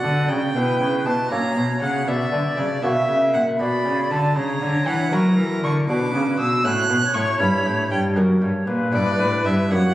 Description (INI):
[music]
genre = classical, baroque-style sonata movement with continuo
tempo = 79 BPM (dotted quarters)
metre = 6/8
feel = straight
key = B minor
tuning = A4 = 439 Hz
[part]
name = bright wooden flute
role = melody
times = 0.0-9.9 s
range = A4 to F#5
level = -25 LUFS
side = left 1 dB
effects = none
[part]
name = warm violin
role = second line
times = 0.0-9.9 s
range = D5 to F#6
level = -25 LUFS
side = right 2 dB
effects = none
[part]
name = lute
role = accompaniment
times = 0.0-9.9 s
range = F#2 to E5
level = -25 LUFS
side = equal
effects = none
[part]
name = rich cello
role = bass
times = 0.0-9.9 s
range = F#2 to F#3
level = -22 LUFS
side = equal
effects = none
[sound]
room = wet recital hall reverb, RT60 1.4 s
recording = recorded on a phone in the room, club reverb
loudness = -18 LUFS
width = side -14 dB against mid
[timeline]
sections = 0.0-9.9 A section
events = none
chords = 0.0 Bm; 0.5 Em/B; 1.3 F#7/A#; 2.1 Bm; 2.8 F#7/B; 3.6 Bm; 4.4 F#7/C#; 5.9 Bm; 6.6 F#m/A; 7.4 Em/G; 8.2 F#; 8.9 Em/G